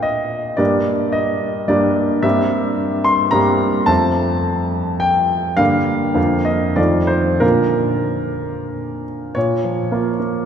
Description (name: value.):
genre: classical, romantic character piece for solo piano.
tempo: 90-111 BPM.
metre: 3/4.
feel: rubato.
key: Bb major.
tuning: A4 = 441 Hz.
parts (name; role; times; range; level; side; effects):
warm concert grand piano; solo; 0.0-10.5 s; F2 to C6; -15 LUFS; equal; none.
room: wet cathedral reverb, RT60 4.3 s.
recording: recorded in a church or concert hall.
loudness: -15 LUFS.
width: side -8 dB against mid.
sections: 0.0-9.4 A section; 9.4-10.5 B section.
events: none.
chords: 0.0 Bb; 0.6 Gm; 2.2 C7/G; 3.9 F; 5.6 Gm; 6.2 Bb/F; 6.8 F7; 7.4 Bb; 9.4 Bbm.